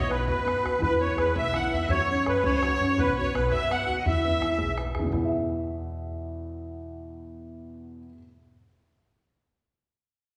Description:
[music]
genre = celtic folk, Celtic jig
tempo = 112 BPM (dotted quarters)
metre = 6/8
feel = straight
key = E major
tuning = A4 = 440 Hz
[part]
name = musette accordion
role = melody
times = 0.0-4.7 s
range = B4 to F#5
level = -29 LUFS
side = equal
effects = none
[part]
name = clear fiddle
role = second line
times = 0.0-4.8 s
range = B4 to F#5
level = -36 LUFS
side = equal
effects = none
[part]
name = dark upright piano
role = accompaniment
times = 0.0-8.2 s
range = E2 to E5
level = -33 LUFS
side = equal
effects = none
[part]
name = upright bass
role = bass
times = 0.0-8.1 s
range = B1 to F#2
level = -35 LUFS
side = equal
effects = none
[part]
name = bodhran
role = percussion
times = 0.1-5.3 s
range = none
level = -35 LUFS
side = equal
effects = none
[sound]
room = wet recital hall reverb, RT60 1.8 s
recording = recorded in a church or concert hall, studio reverb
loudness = -26 LUFS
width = mono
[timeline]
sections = 0.0-5.1 A section; 5.1-7.3 B section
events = none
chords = 0.0 B; 0.8 E; 1.9 F#m; 3.0 B; 4.0 E

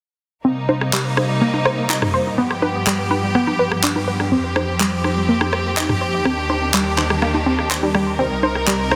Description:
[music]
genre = progressive house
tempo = 124 BPM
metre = 4/4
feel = straight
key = C minor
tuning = A4 = 440 Hz
[part]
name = rich symphonic string section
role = sustained chords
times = 0.4-9.0 s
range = C2 to Bb4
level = -23 LUFS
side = equal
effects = none
[part]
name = analog pluck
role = arpeggios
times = 0.4-9.0 s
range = G3 to C5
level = -23 LUFS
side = equal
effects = chorus, digital delay
[part]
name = punchy analog drum machine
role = percussion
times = 0.7-9.0 s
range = congas, rim click, toms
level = -25 LUFS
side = equal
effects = studio reverb, soft clipping on snare
[part]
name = electronic handclaps and rim click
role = drums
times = 0.9-8.8 s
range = none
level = -27 LUFS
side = equal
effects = studio reverb
[sound]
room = light reverb, digital ambience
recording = dense, heavily limited modern master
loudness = -19 LUFS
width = mono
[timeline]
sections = 0.4-9.0 A section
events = none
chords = 0.4 Cm7; 2.4 G7; 4.3 Fsus2; 6.3 Ebmaj7; 8.2 Cm7

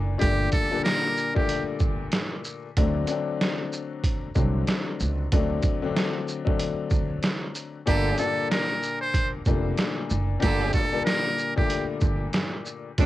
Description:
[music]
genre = hip hop, boom-bap hip-hop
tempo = 94 BPM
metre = 4/4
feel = swing 58% on 16ths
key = G harmonic minor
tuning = A4 = 442 Hz
[part]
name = clear upright piano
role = accompaniment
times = 0.0-13.1 s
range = Bb2 to D4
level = -29 LUFS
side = left 6 dB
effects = cassette tape, high-pass filter, low-pass filter
[part]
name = upright bass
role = bass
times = 0.0-13.1 s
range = F1 to D2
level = -27 LUFS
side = right 1 dB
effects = none
[part]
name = trumpet with metal mute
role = melody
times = 0.2-1.6, 7.9-11.9 s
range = G4 to C5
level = -28 LUFS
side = right 1 dB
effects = high-pass filter, low-pass filter, tape echo
[part]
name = trip hop sampler-style drum kit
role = drums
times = 0.2-13.1 s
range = hi-hat, kick drum, shaker, snare drum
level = -26 LUFS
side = right 1 dB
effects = cassette tape
[part]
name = warm horn section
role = stabs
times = 7.9-13.1 s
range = D3 to A4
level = -32 LUFS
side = right 7 dB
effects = high-pass filter, low-pass filter, cassette tape, tape echo
[sound]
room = light reverb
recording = home recording on cassette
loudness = -23 LUFS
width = side -15 dB against mid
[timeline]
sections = 0.0-13.1 A section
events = none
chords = 0.0 Gmadd9; 2.8 D7; 7.9 Gmadd9

